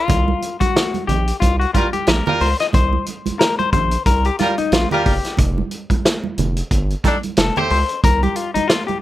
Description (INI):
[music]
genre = funk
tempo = 91 BPM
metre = 4/4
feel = swing 56% on 16ths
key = C dorian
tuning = A4 = 440 Hz
[part]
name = semi-hollow electric guitar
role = accompaniment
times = 0.0-9.0 s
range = Eb4 to Eb5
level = -20 LUFS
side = left 5 dB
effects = spring reverb
[part]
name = round analog bass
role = bass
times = 0.1-8.6 s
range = F1 to Db2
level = -20 LUFS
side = equal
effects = none
[part]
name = vintage drum kit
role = drums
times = 0.1-9.0 s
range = hi-hat, kick drum, snare drum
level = -19 LUFS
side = equal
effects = none
[part]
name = congas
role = percussion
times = 0.1-9.0 s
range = none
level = -24 LUFS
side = right 6 dB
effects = none
[part]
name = clear horn section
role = second line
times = 1.7-7.8 s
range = Eb3 to C5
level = -19 LUFS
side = right 2 dB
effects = none
[sound]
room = light reverb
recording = none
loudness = -15 LUFS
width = side -14 dB against mid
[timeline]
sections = 0.0-9.0 A section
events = clean electric guitar solo 0.0-9.0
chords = 0.0 C7sus4; 5.4 Fsus2; 8.0 C7sus4